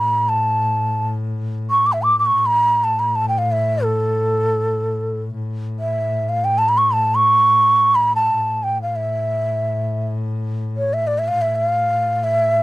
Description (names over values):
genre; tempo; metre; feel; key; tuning
Persian modal ensemble; free time; none; none; A dastgah homayun; A4 = 440 Hz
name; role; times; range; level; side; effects
breathy mellow ney; melody; 0.0-12.6 s; A4 to D6; -16 LUFS; right 1 dB; none
rich double bass; drone; 0.0-12.6 s; A2; -24 LUFS; left 1 dB; stereo widening
room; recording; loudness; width
light reverb; dry, close 1970s-style studio recording; -16 LUFS; side -18 dB against mid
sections
0.0-5.4 A section; 5.4-12.6 A section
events
none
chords
none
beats
free time